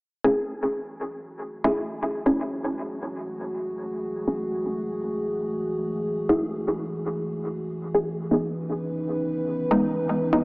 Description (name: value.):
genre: dub techno.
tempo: 119 BPM.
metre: 4/4.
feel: swing 55% on 16ths.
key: F# minor.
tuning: A4 = 441 Hz.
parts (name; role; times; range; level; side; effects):
dark analog pad; sustained chords; 1.4-10.4 s; E3 to B4; -28 LUFS; equal; chorus.
filtered dub chord stab; stabs; 0.2-10.4 s; E3 to G#4; -24 LUFS; equal; chorus, phaser, dub echo.
room: wet echo chamber reverb, RT60 2.4 s.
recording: small speaker sound.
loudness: -24 LUFS.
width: side -28 dB against mid.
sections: 0.2-10.4 A section.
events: filter sweep on analog synth pad 0.2-10.4.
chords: 0.2 F#m9; 8.3 C#m9.